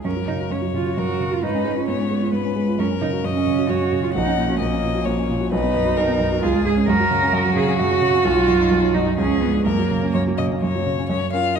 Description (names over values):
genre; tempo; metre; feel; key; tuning
quick classical-period movement for piano trio; 131 BPM; 3/4; straight; F# major; A4 = 440 Hz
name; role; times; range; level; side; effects
warm cello; second line; 0.0-11.6 s; A#3 to A#4; -22 LUFS; right 5 dB; none
warm concert grand piano; accompaniment; 0.0-11.6 s; A#1 to A#4; -21 LUFS; right 1 dB; none
rich violin; melody; 0.1-11.6 s; F#4 to F#5; -26 LUFS; left 9 dB; none
room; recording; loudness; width
moderate scoring stage reverb, RT60 1.6 s; dark, warm production; -18 LUFS; side -7 dB against mid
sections
0.0-11.1 A section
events
none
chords
0.0 F#; 1.4 C#7/G#; 2.8 F#; 4.2 F#/A#; 5.5 B; 6.4 C#; 6.9 F#; 8.2 B; 9.2 C#7b9; 9.7 F#